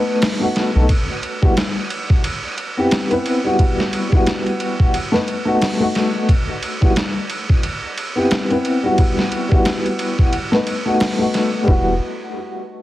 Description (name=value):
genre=trip hop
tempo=89 BPM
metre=4/4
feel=swing 58% on 16ths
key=E harmonic minor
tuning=A4 = 440 Hz
part: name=dark upright piano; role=accompaniment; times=0.0-12.0 s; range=G3 to B4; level=-19 LUFS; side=left 1 dB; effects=tremolo, vintage 12-bit sampler grit, low-pass filter, tape echo
part: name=trip hop sampler-style drum kit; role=drums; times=0.2-11.8 s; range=hi-hat, kick drum, ride cymbal, snare drum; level=-18 LUFS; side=equal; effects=none
part: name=soft dub sub bass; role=bass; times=0.8-0.9, 11.7-12.0 s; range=E1 to B1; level=-17 LUFS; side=equal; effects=tube saturation
room=light reverb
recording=heavily compressed radio sound, multiband compression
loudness=-15 LUFS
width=side -15 dB against mid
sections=0.0-11.7 A section; 11.7-12.8 B section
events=filter sweep on upright piano 0.0-11.7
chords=0.0 B7; 0.9 Emadd9; 2.2 Cmaj7/G; 3.6 Emadd9; 4.9 B7; 6.3 Emadd9; 7.6 Cmaj7/G; 9.0 Emadd9; 10.3 B7; 11.7 Emadd9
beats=0.22 | 0.89 1.56 2.24 2.91 | 3.59 4.26 4.93 5.61 | 6.28 6.96 7.63 8.31 | 8.98 9.65 10.33 11.00 | 11.68